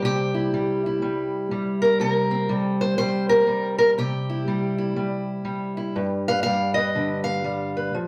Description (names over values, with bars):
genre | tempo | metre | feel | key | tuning
acoustic country blues, solo or duo | 121 BPM | 4/4 | swing 62% on 8ths | C major | A4 = 440 Hz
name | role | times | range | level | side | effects
fingerpicked steel-string acoustic guitar | solo | 0.0-8.1 s | G2 to F5 | -24 LUFS | equal | slapback echo
room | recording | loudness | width
moderate small room reverb, RT60 0.5 s | none | -23 LUFS | mono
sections
0.0-8.1 A section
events
none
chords
0.0 C7; 6.0 G7